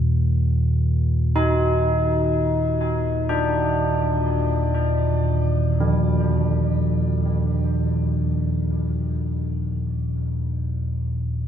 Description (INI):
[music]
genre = dark ambient drone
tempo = free time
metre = none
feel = none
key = unclear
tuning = A4 = 444 Hz
[part]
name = deep rumbling drone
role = drone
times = 0.0-11.5 s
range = Eb2 to Bb2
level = -21 LUFS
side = equal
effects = built-in reverb, phaser
[part]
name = carillon bells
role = arpeggios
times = 1.4-11.5 s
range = D3 to Eb4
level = -24 LUFS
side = left 1 dB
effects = tape echo, shimmer reverb
[sound]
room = wet cathedral reverb, RT60 5.8 s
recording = none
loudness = -19 LUFS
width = side -9 dB against mid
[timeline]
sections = 0.0-11.5 A section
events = none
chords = 0.0 Eb5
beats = free time